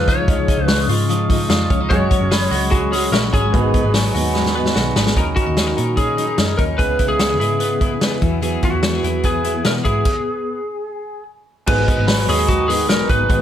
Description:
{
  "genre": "jangly indie pop",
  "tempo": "147 BPM",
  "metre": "4/4",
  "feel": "straight",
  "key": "G# minor",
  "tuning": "A4 = 442 Hz",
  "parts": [
    { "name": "lightly driven lead guitar", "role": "melody", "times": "0.0-13.4 s", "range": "F#4 to C#5", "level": "-21 LUFS", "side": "equal", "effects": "slapback echo" },
    { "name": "glockenspiel with soft plastic mallets", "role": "second line", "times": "0.0-4.9, 11.7-13.4 s", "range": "G#5 to D#6", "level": "-27 LUFS", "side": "right 6 dB", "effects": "none" },
    { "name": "bright upright piano", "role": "accompaniment", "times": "0.0-5.2, 11.7-13.4 s", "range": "G#3 to G#4", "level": "-30 LUFS", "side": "right 5 dB", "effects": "none" },
    { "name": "fingerpicked steel-string acoustic guitar", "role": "accompaniment", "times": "0.0-13.4 s", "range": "G#2 to A#4", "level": "-26 LUFS", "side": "right 4 dB", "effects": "none" },
    { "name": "twelve-string electric guitar", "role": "arpeggios", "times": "0.0-13.4 s", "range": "G#2 to A#4", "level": "-23 LUFS", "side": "left 6 dB", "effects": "harmonic tremolo" },
    { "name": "vintage muted picked electric bass", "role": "bass", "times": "0.0-13.4 s", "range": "F#1 to B2", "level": "-22 LUFS", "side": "equal", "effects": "none" },
    { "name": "vintage drum kit", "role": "drums", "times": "0.1-13.4 s", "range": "crash cymbal, hi-hat, kick drum, snare drum", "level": "-19 LUFS", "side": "equal", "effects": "none" }
  ],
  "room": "light reverb",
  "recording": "none",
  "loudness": "-15 LUFS",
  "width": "side -10 dB against mid",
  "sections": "0.0-5.2 A section; 5.2-11.7 B section; 11.7-13.4 A section",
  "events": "drum fill 4.3-5.2; stop 10.1-11.7",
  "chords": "0.0 C#add9; 1.9 F#sus2; 3.5 G#m7; 5.2 D#m7; 6.8 C#m7; 8.2 Eadd9; 10.1 N.C.; 11.7 G#m7",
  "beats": "| 0.28 0.69 1.09 1.50 | 1.91 2.31 2.72 3.13 | 3.54 3.94 4.35 4.76 | 5.17 5.57 5.98 6.39 | 6.80 7.20 7.61 8.02 | 8.43 8.83 9.24 9.65 | 10.05 10.46 10.87 11.27 | 11.68 12.08 12.49 12.89 | 13.30"
}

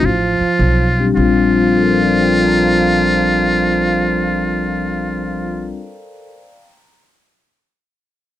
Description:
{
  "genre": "jazz, small-group swing and bop",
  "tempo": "103 BPM",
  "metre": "4/4",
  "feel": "swing 69% on 8ths",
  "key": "Bb major",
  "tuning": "A4 = 440 Hz",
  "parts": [
    { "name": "trumpet with metal mute", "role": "melody", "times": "0.0-5.7 s", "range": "F4", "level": "-18 LUFS", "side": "left 1 dB", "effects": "none" },
    { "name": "warm trombone", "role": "second line", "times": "0.0-5.7 s", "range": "F3", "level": "-19 LUFS", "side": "right 5 dB", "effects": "none" },
    { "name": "vibraphone with soft mallets", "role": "accompaniment", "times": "0.0-7.1 s", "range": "G3 to C6", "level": "-17 LUFS", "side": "left 5 dB", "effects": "none" },
    { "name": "upright bass", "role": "bass", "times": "0.0-5.7 s", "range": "A1 to B1", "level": "-21 LUFS", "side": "equal", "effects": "none" }
  ],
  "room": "light reverb",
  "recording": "dry, close 1970s-style studio recording",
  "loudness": "-13 LUFS",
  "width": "side -12 dB against mid",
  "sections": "0.0-1.2 A section; 1.2-5.8 B section",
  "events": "slowing down 0.0-1.2",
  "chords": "0.0 B7(no3); 1.2 Bb69",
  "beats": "0.04 0.59 | 1.16 1.74 2.32 2.90 | 3.49 4.07 4.65 5.23"
}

